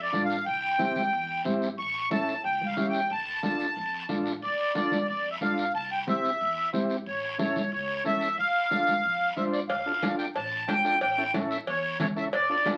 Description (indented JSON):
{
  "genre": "latin, cumbia",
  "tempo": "182 BPM",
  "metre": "4/4",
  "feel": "straight",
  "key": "D minor, D harmonic minor from 9.7 s",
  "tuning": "A4 = 440 Hz",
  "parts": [
    { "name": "accordion", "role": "melody", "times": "0.0-12.7 s", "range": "C#5 to C#6", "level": "-29 LUFS", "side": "equal", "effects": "light tremolo tuning" },
    { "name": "upright bass", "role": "bass", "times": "0.0-12.8 s", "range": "A1 to G2", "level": "-50 LUFS", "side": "equal", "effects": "none" },
    { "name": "overdriven combo organ", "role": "accompaniment", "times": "0.1-12.8 s", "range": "C4 to C5", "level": "-34 LUFS", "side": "equal", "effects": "none" },
    { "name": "congas", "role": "percussion", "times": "0.1-12.8 s", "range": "none", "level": "-36 LUFS", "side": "equal", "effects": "none" },
    { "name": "guiro", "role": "percussion", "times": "0.1-12.8 s", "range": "none", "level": "-44 LUFS", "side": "equal", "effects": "none" },
    { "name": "cowbell", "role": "percussion", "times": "9.7-12.8 s", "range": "none", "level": "-38 LUFS", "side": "equal", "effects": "none" }
  ],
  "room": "wet small room reverb, RT60 0.5 s",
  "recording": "very old 78 rpm record, vinyl crackle",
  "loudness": "-28 LUFS",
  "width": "mono",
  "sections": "0.0-9.7 A section; 9.7-12.8 B section",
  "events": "none",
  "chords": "0.5 C; 1.8 A7; 3.1 Dm; 5.7 C; 7.1 A; 8.4 Dm; 11.0 A7",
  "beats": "0.14 | 0.47 0.80 1.13 1.46 | 1.79 2.12 2.45 2.78 | 3.11 3.44 3.77 4.10 | 4.43 4.76 5.09 5.42 | 5.75 6.08 6.41 6.74 | 7.07 7.39 7.72 8.05 | 8.38 8.71 9.04 9.37 | 9.70 10.03 10.36 10.69 | 11.02 11.35 11.68 12.01 | 12.34 12.66"
}